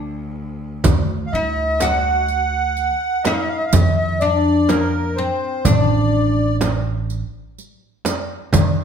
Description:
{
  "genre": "Arabic maqam ensemble",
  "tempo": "125 BPM (eighths)",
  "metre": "10/8",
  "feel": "straight",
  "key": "D maqam saba",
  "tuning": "A4 = 441 Hz",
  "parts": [
    { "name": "rich cello", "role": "drone", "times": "0.0-0.9 s", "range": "D2", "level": "-32 LUFS", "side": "left 1 dB", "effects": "none" },
    { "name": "upright bass", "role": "bass", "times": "0.8-8.8 s", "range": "A1 to D3", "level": "-21 LUFS", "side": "right 2 dB", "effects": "none" },
    { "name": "darbuka", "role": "percussion", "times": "0.8-8.8 s", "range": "none", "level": "-23 LUFS", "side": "right 1 dB", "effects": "none" },
    { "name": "frame drum", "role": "percussion", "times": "0.8-8.8 s", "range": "none", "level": "-22 LUFS", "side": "right 2 dB", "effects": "none" },
    { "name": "riq", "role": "percussion", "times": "0.8-8.8 s", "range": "none", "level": "-27 LUFS", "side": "right 6 dB", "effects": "none" },
    { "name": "oud", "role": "melody", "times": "1.3-6.6 s", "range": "Bb3 to F#4", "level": "-22 LUFS", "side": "left 3 dB", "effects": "none" },
    { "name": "accordion", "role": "second line", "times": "1.3-6.6 s", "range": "Bb4 to F#5", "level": "-21 LUFS", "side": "right 1 dB", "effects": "light tremolo tuning" }
  ],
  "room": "wet large studio reverb, RT60 1.2 s",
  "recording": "band playing live in one room",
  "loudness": "-16 LUFS",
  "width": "side -7 dB against mid",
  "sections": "0.8-8.8 A section",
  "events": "break 0.0-0.8",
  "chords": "none"
}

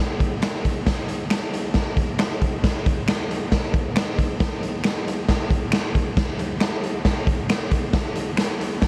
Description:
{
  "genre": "soul",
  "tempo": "136 BPM",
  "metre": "4/4",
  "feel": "straight",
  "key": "none",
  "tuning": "none",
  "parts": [
    { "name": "raw garage drum kit", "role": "drums", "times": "0.2-8.9 s", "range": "hi-hat, kick drum, snare drum", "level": "-23 LUFS", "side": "equal", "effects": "none" },
    { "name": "finger snaps", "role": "percussion", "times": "0.4-8.5 s", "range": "none", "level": "-32 LUFS", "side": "equal", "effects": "none" }
  ],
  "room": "light reverb",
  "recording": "cassette tape",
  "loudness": "-23 LUFS",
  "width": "mono",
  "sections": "0.0-8.9 A section",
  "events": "none",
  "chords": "none"
}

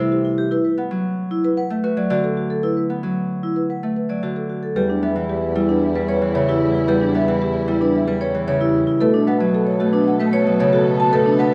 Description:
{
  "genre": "classical, minimalist pattern music",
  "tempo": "113 BPM",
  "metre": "4/4",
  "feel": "straight",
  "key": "E dorian from 4.8 s",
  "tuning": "A4 = 440 Hz",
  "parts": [
    { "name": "marimba with soft mallets", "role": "melody", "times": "0.0-11.5 s", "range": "G4 to A5", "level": "-26 LUFS", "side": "equal", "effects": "none" },
    { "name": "Celtic harp", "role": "accompaniment", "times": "0.0-11.5 s", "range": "C3 to F#4", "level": "-24 LUFS", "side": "equal", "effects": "none" },
    { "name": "vibraphone with medium hard mallets", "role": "arpeggios", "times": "0.0-11.5 s", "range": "D4 to D5", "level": "-23 LUFS", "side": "equal", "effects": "none" },
    { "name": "warm studio string section", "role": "sustained chords", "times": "4.8-11.5 s", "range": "G3 to A4", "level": "-32 LUFS", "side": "equal", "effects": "none" },
    { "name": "mellow bassoon", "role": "bass", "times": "4.8-11.5 s", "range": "E2 to B2", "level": "-26 LUFS", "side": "equal", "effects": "none" }
  ],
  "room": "light reverb",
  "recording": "dark, warm production",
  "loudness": "-19 LUFS",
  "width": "mono",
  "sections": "0.0-4.8 A section; 4.8-11.5 B section",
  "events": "none",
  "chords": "0.0 Am7; 0.5 Bm7; 4.8 Em7; 9.0 Bm7"
}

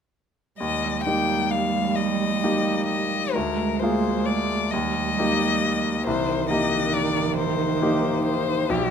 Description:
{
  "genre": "classical, slow romantic movement for piano quartet",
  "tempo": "44 BPM (dotted quarters)",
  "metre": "6/8",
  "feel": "rubato",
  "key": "Eb major",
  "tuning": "A4 = 439 Hz",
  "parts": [
    { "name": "rich violin", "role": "melody", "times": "0.6-8.9 s", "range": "G4 to G5", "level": "-26 LUFS", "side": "left 7 dB", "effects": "none" },
    { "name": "warm cello", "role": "second line", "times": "0.6-8.9 s", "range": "Eb3 to Ab3", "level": "-26 LUFS", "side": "right 7 dB", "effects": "none" },
    { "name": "bright grand piano", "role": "accompaniment", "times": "0.6-8.9 s", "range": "B1 to Ab4", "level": "-25 LUFS", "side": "left 1 dB", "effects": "none" }
  ],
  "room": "moderate large studio reverb, RT60 0.9 s",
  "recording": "minimal, uncompressed stereo recording",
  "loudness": "-21 LUFS",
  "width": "side -7 dB against mid",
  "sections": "0.6-8.9 A section",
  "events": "none",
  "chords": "0.6 Eb; 3.4 Bb7/D; 4.7 Eb; 6.1 Cm7"
}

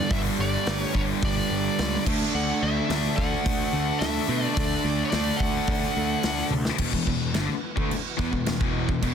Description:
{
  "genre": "hard rock",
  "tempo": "108 BPM",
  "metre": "4/4",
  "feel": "straight",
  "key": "E minor",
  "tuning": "A4 = 440 Hz",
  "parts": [
    { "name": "nasal lead guitar with a parked wah", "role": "melody", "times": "0.0-6.5 s", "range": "C#5 to F#5", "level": "-30 LUFS", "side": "right 1 dB", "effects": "overdrive" },
    { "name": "overdriven tonewheel organ", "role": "sustained chords", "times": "0.0-9.1 s", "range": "E3 to E5", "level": "-41 LUFS", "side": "right 1 dB", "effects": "none" },
    { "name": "heavy high-gain guitar", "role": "riff", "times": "0.0-9.1 s", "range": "E2 to D4", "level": "-30 LUFS", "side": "left 14 dB", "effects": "distortion" },
    { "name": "overdriven semi-hollow guitar", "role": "riff", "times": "0.0-9.1 s", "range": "E2 to D4", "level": "-30 LUFS", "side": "right 15 dB", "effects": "spring reverb" },
    { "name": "fuzz picked electric bass", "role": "bass", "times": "0.1-9.1 s", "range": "E1 to B2", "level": "-29 LUFS", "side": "equal", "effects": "overdrive" },
    { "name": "big rock drum kit", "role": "drums", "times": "0.1-9.1 s", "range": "crash cymbal, hi-hat, kick drum, snare drum, toms", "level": "-28 LUFS", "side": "equal", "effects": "none" }
  ],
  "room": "small room ambience",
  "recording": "dense, heavily limited modern master",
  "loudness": "-23 LUFS",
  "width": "side -8 dB against mid",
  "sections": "0.0-6.8 A section; 6.8-9.1 B section",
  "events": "drum fill 6.5",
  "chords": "0.0 G; 2.1 D; 6.8 Em"
}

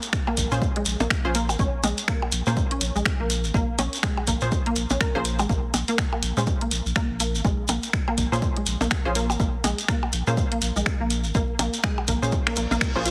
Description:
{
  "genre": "minimal techno",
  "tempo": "123 BPM",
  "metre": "4/4",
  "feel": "swing 59% on 16ths",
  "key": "Bb minor",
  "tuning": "A4 = 440 Hz",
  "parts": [
    { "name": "garage drum kit", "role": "drums", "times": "0.0-13.1 s", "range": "finger snaps, hi-hat", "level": "-29 LUFS", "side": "equal", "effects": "none" },
    { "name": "shekere", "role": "percussion", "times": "0.0-13.1 s", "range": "none", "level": "-34 LUFS", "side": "equal", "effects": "none" },
    { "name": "downlifter and reverse cymbal", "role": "sound effects", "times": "0.0-1.6, 12.6-13.1 s", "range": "none", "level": "-42 LUFS", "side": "equal", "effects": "none" },
    { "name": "electronic kick drum", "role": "drums", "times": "0.1-12.9 s", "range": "none", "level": "-29 LUFS", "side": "equal", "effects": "none" },
    { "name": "resonant blip pluck", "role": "riff", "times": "0.3-13.1 s", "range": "Ab3 to Bb4", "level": "-31 LUFS", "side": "equal", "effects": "ensemble chorus, sidechain pumping, dub echo" },
    { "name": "percussion blips", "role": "percussion", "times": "0.3-12.8 s", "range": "none", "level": "-31 LUFS", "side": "equal", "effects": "overdrive, dub echo" },
    { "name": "saturated sub bass", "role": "bass", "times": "0.4-13.1 s", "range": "Ab1 to Bb2", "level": "-30 LUFS", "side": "equal", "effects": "sidechain pumping" },
    { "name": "filtered dub chord stab", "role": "stabs", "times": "0.5-13.0 s", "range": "Db4 to C5", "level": "-33 LUFS", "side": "equal", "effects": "lush chorus, dub echo" }
  ],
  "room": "light reverb, digital ambience",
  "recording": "heavily compressed radio sound, multiband compression",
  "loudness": "-24 LUFS",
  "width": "mono",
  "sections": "0.0-13.1 A section",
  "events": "reverse cymbal 12.6-13.1",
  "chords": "0.0 Bbm7"
}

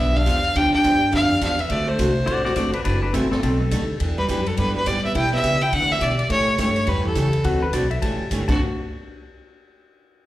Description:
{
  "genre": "country, western swing",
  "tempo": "209 BPM",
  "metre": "4/4",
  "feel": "swing 61% on 8ths",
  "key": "unclear",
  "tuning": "A4 = 440 Hz",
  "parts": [
    { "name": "clear fiddle", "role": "melody", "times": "0.0-8.6 s", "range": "F#4 to G5", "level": "-22 LUFS", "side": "equal", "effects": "slapback echo" },
    { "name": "archtop guitar, miked and amplified", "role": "second line", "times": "0.0-8.6 s", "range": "E3 to E4", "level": "-25 LUFS", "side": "right 1 dB", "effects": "none" },
    { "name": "picked steel-string acoustic guitar", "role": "accompaniment", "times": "0.0-8.6 s", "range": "B2 to A4", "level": "-28 LUFS", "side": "right 2 dB", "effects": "none" },
    { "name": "upright bass", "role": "bass", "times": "0.0-8.6 s", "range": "F#1 to D3", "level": "-24 LUFS", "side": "equal", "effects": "none" },
    { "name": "swinging big-band drum kit", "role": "drums", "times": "0.3-8.5 s", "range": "crash cymbal, hi-hat, kick drum, ride cymbal, snare drum", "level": "-29 LUFS", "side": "left 1 dB", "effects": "none" },
    { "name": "clean lap steel guitar", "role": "second line", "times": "2.3-4.1, 7.4-8.6 s", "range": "C4 to A5", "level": "-26 LUFS", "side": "left 2 dB", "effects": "none" }
  ],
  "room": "light reverb",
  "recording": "live gig heard through the venue's PA, club reverb",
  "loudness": "-18 LUFS",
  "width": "side -15 dB against mid",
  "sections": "0.0-8.6 A section; 8.6-9.7 B section",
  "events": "none",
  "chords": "0.0 G7; 1.7 D7; 2.9 F#m7b5; 3.4 B7alt; 4.0 Em7; 6.3 A7; 7.4 D7; 8.0 A7; 8.5 D7; 8.6 N.C."
}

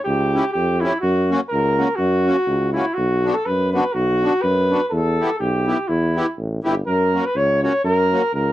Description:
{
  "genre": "alpine folk, alpine dance band",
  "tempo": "124 BPM",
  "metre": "2/4",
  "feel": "swing 55% on 8ths",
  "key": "unclear",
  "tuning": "A4 = 440 Hz",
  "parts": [
    { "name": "warm flugelhorn", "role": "melody", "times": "0.0-8.5 s", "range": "E4 to C#5", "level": "-20 LUFS", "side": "equal", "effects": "none" },
    { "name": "clear tuba", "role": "bass", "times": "0.1-8.5 s", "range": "G1 to F#2", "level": "-21 LUFS", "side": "equal", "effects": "none" },
    { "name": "accordion", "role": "accompaniment", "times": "0.3-8.2 s", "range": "A#3 to G4", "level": "-22 LUFS", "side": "left 1 dB", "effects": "light tremolo tuning" }
  ],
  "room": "light reverb",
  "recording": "dry, close 1970s-style studio recording",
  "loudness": "-17 LUFS",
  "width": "side -14 dB against mid",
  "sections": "0.0-8.5 A section",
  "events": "none",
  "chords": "0.0 C#dim; 1.0 F#; 3.0 Bm; 4.9 Em; 6.9 F#"
}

